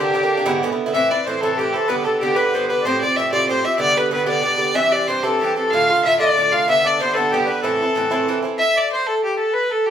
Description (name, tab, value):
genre	celtic folk, Celtic jig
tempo	125 BPM (dotted quarters)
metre	6/8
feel	straight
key	A minor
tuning	A4 = 439 Hz
part	clear fiddle	melody	0.0-9.9 s	G4 to F5	-19 LUFS	equal	none
part	accordion	second line	0.0-9.9 s	G4 to F5	-21 LUFS	left 2 dB	none
part	Irish bouzouki	accompaniment	0.0-8.6 s	G2 to G4	-22 LUFS	right 3 dB	none
room	moderate large studio reverb, RT60 0.9 s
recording	band playing live in one room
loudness	-16 LUFS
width	side -9 dB against mid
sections	0.9-8.6 A section; 8.6-9.9 A section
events	none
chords	0.5 E7; 0.9 Am; 1.9 G; 2.8 Fadd9; 3.8 G; 4.8 C; 5.7 Dm; 6.7 G; 7.6 Am; 8.6 N.C.